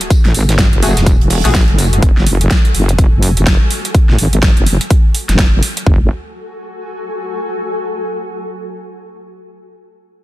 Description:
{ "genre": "bass house", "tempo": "125 BPM", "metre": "4/4", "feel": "swing 60% on 16ths", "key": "F# minor", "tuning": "A4 = 440 Hz", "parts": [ { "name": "big-room dance drum kit", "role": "drums", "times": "0.0-5.8 s", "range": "hi-hat, snare drum", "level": "-18 LUFS", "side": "equal", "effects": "overdrive" }, { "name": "granular cloud pad", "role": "texture", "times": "0.0-7.7 s", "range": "F#4 to G#5", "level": "-26 LUFS", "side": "left 1 dB", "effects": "built-in reverb, sidechain pumping" }, { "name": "big-room dance drum kit", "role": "drums", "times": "0.1-6.0 s", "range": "kick drum, toms", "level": "-11 LUFS", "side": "equal", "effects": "overdrive" }, { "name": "tight metal drum kit", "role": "drums", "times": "0.1-1.9 s", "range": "hi-hat, snare drum, tambourine", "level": "-25 LUFS", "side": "right 2 dB", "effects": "high-pass filter on hats, high-pass filter on snare, high-pass filter on perc, high-pass filter on room" }, { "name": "wobble bass", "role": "bass", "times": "0.2-6.1 s", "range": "E1 to A1", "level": "-13 LUFS", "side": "equal", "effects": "chorus, tube saturation, sidechain pumping" }, { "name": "band-passed chord stab", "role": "stabs", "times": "0.8-1.5 s", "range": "A3 to G#4", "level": "-22 LUFS", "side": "left 3 dB", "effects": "chorus, vintage 12-bit sampler grit, sidechain pumping, tape echo" } ], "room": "little or no reverb", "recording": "dense, heavily limited modern master", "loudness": "-10 LUFS", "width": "side -16 dB against mid", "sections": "0.0-5.9 A section; 5.9-7.8 B section", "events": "fade-out on ambient pad 0.0-5.9; filter sweep on wobble bass 0.0-5.9", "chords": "0.0 F#madd9" }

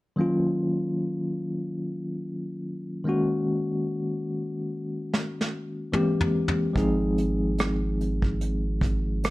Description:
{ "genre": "R&B, neo-soul", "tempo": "73 BPM", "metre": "4/4", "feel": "swing 55% on 16ths", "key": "Eb dorian", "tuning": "A4 = 440 Hz", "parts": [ { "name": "tine electric piano", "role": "accompaniment", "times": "0.2-9.3 s", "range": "Eb3 to Ab4", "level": "-26 LUFS", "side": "left 1 dB", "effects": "medium tremolo" }, { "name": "vintage brush drum kit", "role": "drums", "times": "5.1-9.3 s", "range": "hi-hat, kick drum, rim click, snare drum, toms", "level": "-27 LUFS", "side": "equal", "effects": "none" }, { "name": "round analog bass", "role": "bass", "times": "6.8-9.3 s", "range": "Ab1", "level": "-28 LUFS", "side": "right 1 dB", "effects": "none" } ], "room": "light reverb", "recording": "none", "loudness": "-25 LUFS", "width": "side -18 dB against mid", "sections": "0.2-9.3 A section", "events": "drum fill 5.1-6.8", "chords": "0.2 Ebm9; 3.1 Ab9sus4; 5.9 C7b13; 6.8 Fm7/Ab" }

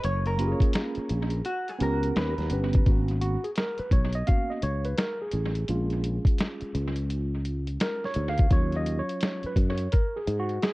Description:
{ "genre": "hip hop, jazz-hop", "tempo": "85 BPM", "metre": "4/4", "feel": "swing 63% on 16ths", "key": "unclear", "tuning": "A4 = 440 Hz", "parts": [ { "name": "vintage hollow-body jazz guitar", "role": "melody", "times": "0.0-2.8 s", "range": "F#4 to C#5", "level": "-34 LUFS", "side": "right 1 dB", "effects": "tape echo" }, { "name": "sustaining fretless electric bass", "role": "bass", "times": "0.0-10.6 s", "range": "F#1 to G#2", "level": "-28 LUFS", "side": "equal", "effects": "wide subtle chorus" }, { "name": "lo-fi sampler-style drum kit", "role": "drums", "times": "0.0-10.7 s", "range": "hi-hat, kick drum, snare drum", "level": "-25 LUFS", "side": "equal", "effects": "none" }, { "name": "tine electric piano", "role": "accompaniment", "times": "0.4-10.7 s", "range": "F#3 to E#5", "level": "-31 LUFS", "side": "right 1 dB", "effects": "medium stereo tremolo" } ], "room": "light reverb, digital ambience", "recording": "echo-heavy mix, cassette tape", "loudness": "-24 LUFS", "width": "side -21 dB against mid", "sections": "0.0-2.9 A section; 2.9-10.7 A section", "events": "hollow-body jazz guitar solo 0.0-2.9; tine electric piano solo 2.9-10.7", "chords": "0.0 F#maj9; 2.2 D#7b13; 2.9 G#m11; 5.7 A#m7; 8.5 D#m9" }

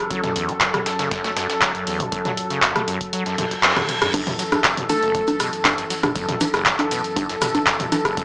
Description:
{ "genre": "acid house", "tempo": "119 BPM", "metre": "4/4", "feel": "straight", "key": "F# minor", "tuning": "A4 = 441 Hz", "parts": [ { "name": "warm analog pad", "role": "sustained chords", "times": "0.0-8.2 s", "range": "F#2 to A4", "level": "-26 LUFS", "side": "left 1 dB", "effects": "chorus, sidechain pumping" }, { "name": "acid bass, saw", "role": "riff", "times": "0.1-8.2 s", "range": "F#1 to A3", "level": "-28 LUFS", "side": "equal", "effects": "lush chorus, cassette tape, sidechain pumping, digital delay" }, { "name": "dusty soul sampler-style drum kit", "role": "drums", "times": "0.1-8.2 s", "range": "hi-hat, snare drum", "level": "-30 LUFS", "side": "equal", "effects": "none" }, { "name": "electronic kick drum", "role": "drums", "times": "0.1-8.2 s", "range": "none", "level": "-34 LUFS", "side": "equal", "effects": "none" }, { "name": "punchy analog drum machine", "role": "drums", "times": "0.1-8.2 s", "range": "congas, crash cymbal, handclaps, hi-hat, rim click, toms", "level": "-19 LUFS", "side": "equal", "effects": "none" }, { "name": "reverse cymbal", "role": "sound effects", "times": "3.4-4.1 s", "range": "none", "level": "-27 LUFS", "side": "right 1 dB", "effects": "none" }, { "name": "maracas", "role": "percussion", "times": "4.1-8.2 s", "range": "none", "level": "-33 LUFS", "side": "right 1 dB", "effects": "none" }, { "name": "plucky unison lead", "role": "melody", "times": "4.9-5.3 s", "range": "A4", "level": "-22 LUFS", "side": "equal", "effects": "digital delay" } ], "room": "moderate digital room reverb, RT60 0.9 s, digital ambience", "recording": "small speaker sound", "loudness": "-18 LUFS", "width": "side -24 dB against mid", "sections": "0.0-4.1 A section; 4.1-8.2 B section", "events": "kick drops out 3.1-4.1; reverse cymbal 3.4-4.1; band accent 3.6; drum fill 3.8-4.1; drop 4.1-8.2", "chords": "0.0 F#m; 4.1 F#m7" }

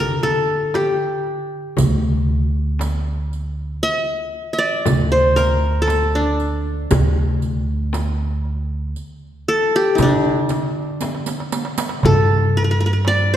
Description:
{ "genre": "Arabic maqam ensemble", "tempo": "117 BPM (eighths)", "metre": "10/8", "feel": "straight", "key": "D maqam bayati", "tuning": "A4 = 440 Hz", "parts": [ { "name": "qanun", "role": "melody", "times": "0.0-13.4 s", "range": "D4 to E5-50c", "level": "-19 LUFS", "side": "left 1 dB", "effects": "none" }, { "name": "upright bass", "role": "bass", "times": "0.0-13.4 s", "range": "D2 to D3", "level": "-20 LUFS", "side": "right 1 dB", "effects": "none" }, { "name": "frame drum", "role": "percussion", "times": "0.2-13.3 s", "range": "none", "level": "-27 LUFS", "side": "left 2 dB", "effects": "none" }, { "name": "darbuka", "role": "percussion", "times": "0.7-13.3 s", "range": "none", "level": "-23 LUFS", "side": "right 1 dB", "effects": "none" }, { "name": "riq", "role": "percussion", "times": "1.8-12.0 s", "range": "none", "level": "-29 LUFS", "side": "right 4 dB", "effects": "none" } ], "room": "wet scoring stage reverb, RT60 1.9 s", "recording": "heard from further back in the room", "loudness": "-17 LUFS", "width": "side -11 dB against mid", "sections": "0.0-12.0 A section; 12.0-13.4 B section", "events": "drum fill 11.0-12.0", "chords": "none" }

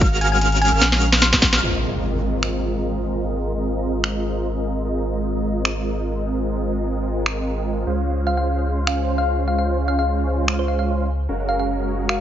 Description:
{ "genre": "future bass", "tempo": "149 BPM", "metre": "4/4", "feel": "swing 54% on 16ths, half-time", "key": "Ab mixolydian", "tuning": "A4 = 440 Hz", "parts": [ { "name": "airy dreamy lead", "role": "arpeggios", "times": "0.0-1.6 s", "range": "F6", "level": "-24 LUFS", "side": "equal", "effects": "chorus, sidechain pumping" }, { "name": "supersaw chords", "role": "riff", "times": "0.0-12.2 s", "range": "Ab3 to F5", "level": "-24 LUFS", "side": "right 1 dB", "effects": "analog chorus, sidechain pumping, low-pass filter" }, { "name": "saturated sub bass", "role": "bass", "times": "0.0-12.2 s", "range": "Gb1 to Db2", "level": "-23 LUFS", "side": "equal", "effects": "tube saturation, sidechain pumping" }, { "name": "electronic kick drum", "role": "drums", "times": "0.0-1.5 s", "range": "none", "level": "-18 LUFS", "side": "equal", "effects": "overdrive" }, { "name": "trap drum kit", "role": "drums", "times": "0.0-12.2 s", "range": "finger snaps, hi-hat, snare drum", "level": "-19 LUFS", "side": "equal", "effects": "overdrive" }, { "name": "thumb-piano-like synth pluck", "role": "melody", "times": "0.2-1.5, 8.3-12.2 s", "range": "C5 to C6", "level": "-25 LUFS", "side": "left 1 dB", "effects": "chorus, phaser, sidechain pumping, dub echo" }, { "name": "impact", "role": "sound effects", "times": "1.6-3.2 s", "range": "none", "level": "-29 LUFS", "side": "equal", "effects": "none" } ], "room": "light reverb, digital ambience", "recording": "nothing above 7.5 kHz", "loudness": "-18 LUFS", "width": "side -10 dB against mid", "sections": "0.0-1.6 A section; 1.6-12.2 B section", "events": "drop 0.0-1.6; drum fill 0.8-1.6; band accent 1.5; impact 1.6-3.2", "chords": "0.0 Gbmaj9; 1.6 Ab69; 7.9 Dbmaj7; 11.3 Gbmaj9" }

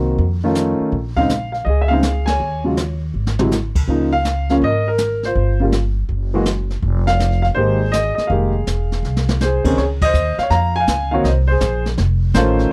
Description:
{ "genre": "jazz piano trio", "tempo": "163 BPM", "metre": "4/4", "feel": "swing 66% on 8ths", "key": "F minor", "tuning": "A4 = 440 Hz", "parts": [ { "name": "warm concert grand piano", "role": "melody", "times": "0.0-12.7 s", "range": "C3 to Bb5", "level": "-20 LUFS", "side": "equal", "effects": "none" }, { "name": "upright bass", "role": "bass", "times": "0.0-12.7 s", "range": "E1 to F2", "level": "-21 LUFS", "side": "equal", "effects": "none" }, { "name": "jazz brush drum kit", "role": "drums", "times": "0.2-12.7 s", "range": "brushed snare drum, crash cymbal, hi-hat, kick drum, ride cymbal, snare drum, toms", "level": "-25 LUFS", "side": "equal", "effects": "none" } ], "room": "little or no reverb", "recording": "none", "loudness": "-18 LUFS", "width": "mono", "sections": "0.0-9.8 A section; 9.8-12.7 B section", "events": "band accent 2.2, 10.0; drum fill 3.1-3.5, 9.0-9.4", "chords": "0.2 Faug7; 0.9 Bbm11; 2.4 Eb7sus4; 3.1 Ab; 3.9 Db69; 5.4 G7(no3); 6.1 N.C.; 6.8 Fm7; 9.8 Dbmaj9; 11.2 Bb7sus2; 12.0 F7b13" }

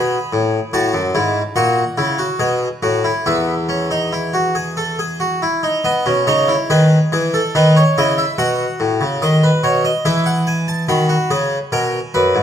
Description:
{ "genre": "classical, baroque-style 3-part fugue for harpsichord", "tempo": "72 BPM", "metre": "3/4", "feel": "straight", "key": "E major", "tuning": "A4 = 441 Hz", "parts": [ { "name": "harpsichord", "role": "solo", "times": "0.0-12.4 s", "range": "E2 to B5", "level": "-14 LUFS", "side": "equal", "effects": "none" } ], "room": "moderate recital hall reverb, RT60 1.7 s", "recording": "close, detailed microphones", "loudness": "-14 LUFS", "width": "side -9 dB against mid", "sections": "0.0-5.9 A section; 5.9-12.4 B section", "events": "none", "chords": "0.0 G#m; 0.7 A5; 1.6 F#7/A#; 2.4 B5; 3.3 E; 5.9 E/B; 7.6 B/D#; 8.4 B7; 10.1 E; 10.9 B" }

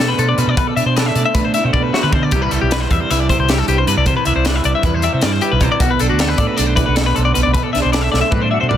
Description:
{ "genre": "math rock and midwest emo", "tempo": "310 BPM (eighths)", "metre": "9/8", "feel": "straight", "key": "unclear", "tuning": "A4 = 441 Hz", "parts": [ { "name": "electric guitar through a small old amp", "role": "accompaniment", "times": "0.0-8.8 s", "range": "G2 to C5", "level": "-21 LUFS", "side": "right 7 dB", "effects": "none" }, { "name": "twelve-string electric guitar", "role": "arpeggios", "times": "0.0-8.8 s", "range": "F#4 to E5", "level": "-18 LUFS", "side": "left 7 dB", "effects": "digital delay" }, { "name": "fingered electric bass", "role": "bass", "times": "0.0-8.8 s", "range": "B1 to A3", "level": "-18 LUFS", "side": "equal", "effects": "none" }, { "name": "crisp fusion drum kit", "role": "drums", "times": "0.0-8.8 s", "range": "hi-hat, kick drum, snare drum, toms", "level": "-19 LUFS", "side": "equal", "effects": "none" } ], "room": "light reverb", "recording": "dense, heavily limited modern master", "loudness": "-13 LUFS", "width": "side -10 dB against mid", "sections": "0.0-8.8 A section", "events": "drum fill 1.7-2.3, 8.1-8.8", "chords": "0.0 E9sus4/B; 2.3 Cmaj7; 5.8 E9sus4/B" }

